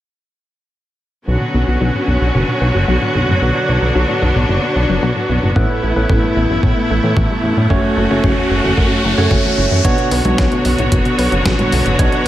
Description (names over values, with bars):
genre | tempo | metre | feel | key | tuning
italo disco | 112 BPM | 4/4 | straight | B minor | A4 = 440 Hz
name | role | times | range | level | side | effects
bright studio string section | sustained chords | 1.3-12.3 s | D3 to C#5 | -17 LUFS | equal | none
analog pluck | arpeggios | 1.3-12.2 s | C#2 to B3 | -23 LUFS | left 2 dB | chorus, tape echo
chorused synth bass | bass | 1.3-12.3 s | F#1 to A2 | -17 LUFS | equal | none
overdriven tine electric piano | stabs | 5.6-12.3 s | A2 to C#5 | -19 LUFS | right 2 dB | phaser, tape echo
electronic kick drum | drums | 5.6-12.1 s | none | -17 LUFS | equal | overdrive, studio ambience
riser | sound effects | 6.7-9.8 s | none | -24 LUFS | equal | none
clean 12-bit digital drum machine | drums | 9.8-12.3 s | congas, hi-hat, snare drum | -21 LUFS | equal | studio ambience, gated reverb
room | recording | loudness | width
light reverb | none | -12 LUFS | side -13 dB against mid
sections
1.3-9.8 A section; 9.8-12.3 B section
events
filter sweep on synth arpeggio sound 1.3-9.8; riser 6.7-9.8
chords
1.3 Bmadd9; 5.6 Asus2; 7.7 F#m; 9.8 Bmadd9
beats
| 1.27 1.81 2.35 2.88 | 3.42 3.95 4.49 5.03 | 5.56 6.10 6.63 7.17 | 7.70 8.24 8.78 9.31 | 9.85 10.38 10.92 11.45 | 11.99